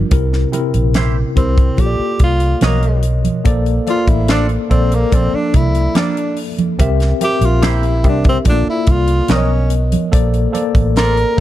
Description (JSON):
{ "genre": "lush 1970s-style soul", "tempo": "72 BPM", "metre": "4/4", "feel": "straight", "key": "unclear", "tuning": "A4 = 440 Hz", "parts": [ { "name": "tine electric piano", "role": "accompaniment", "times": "0.0-11.4 s", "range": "B2 to E5", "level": "-20 LUFS", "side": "left 3 dB", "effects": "medium stereo tremolo" }, { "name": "vintage muted fingered electric bass", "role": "bass", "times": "0.0-11.2 s", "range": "A1 to C2", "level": "-16 LUFS", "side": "equal", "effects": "none" }, { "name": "tight funk drum kit", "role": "drums", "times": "0.1-11.4 s", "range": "hi-hat, kick drum, snare drum", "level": "-16 LUFS", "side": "equal", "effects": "none" }, { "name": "congas", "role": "percussion", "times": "0.1-11.2 s", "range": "none", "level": "-21 LUFS", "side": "right 5 dB", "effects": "none" }, { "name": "semi-hollow electric guitar", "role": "riff", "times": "1.0-11.2 s", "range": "Bb3 to D#5", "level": "-26 LUFS", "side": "right 4 dB", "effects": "none" }, { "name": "breathy tenor saxophone", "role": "melody", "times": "1.4-11.4 s", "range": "A#3 to Bb4", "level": "-19 LUFS", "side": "equal", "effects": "none" } ], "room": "little or no reverb", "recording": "dark, warm production", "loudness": "-12 LUFS", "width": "side -13 dB against mid", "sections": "0.1-11.4 A section", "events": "tenor saxophone solo 0.1-11.4", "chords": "0.1 C7; 1.8 Gm9/Bb; 2.6 Bmaj9; 3.5 Bbmaj9; 5.1 Bbmaj9#11; 6.8 C7; 8.5 Bbmaj9#11; 9.3 Bmaj9; 10.1 Bbmaj9" }